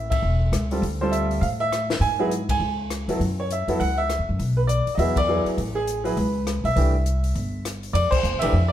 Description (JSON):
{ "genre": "jazz piano trio", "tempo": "202 BPM", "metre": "4/4", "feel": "swing 60% on 8ths", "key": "A major", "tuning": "A4 = 440 Hz", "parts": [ { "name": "clear baby grand piano", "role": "melody", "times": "0.0-8.7 s", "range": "E3 to G#5", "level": "-24 LUFS", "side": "right 1 dB", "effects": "none" }, { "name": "upright bass", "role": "bass", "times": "0.0-8.7 s", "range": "E1 to A2", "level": "-24 LUFS", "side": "equal", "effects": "none" }, { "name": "compact cocktail drum kit", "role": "drums", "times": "0.1-8.5 s", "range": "crash cymbal, hi-hat, kick drum, ride cymbal, rim click, snare drum", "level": "-30 LUFS", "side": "left 2 dB", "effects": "none" } ], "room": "moderate stone room reverb, RT60 1.2 s", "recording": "band playing live in one room", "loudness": "-20 LUFS", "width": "side -11 dB against mid", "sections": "0.0-7.9 A section", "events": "band accent 0.1, 2.5, 5.1, 8.1", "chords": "0.0 A; 0.8 Dm9; 2.0 N.C.; 2.6 F#7(no3); 4.4 Bm; 5.0 E7; 5.6 Amaj9; 6.8 C; 7.9 Fmaj7(no3)" }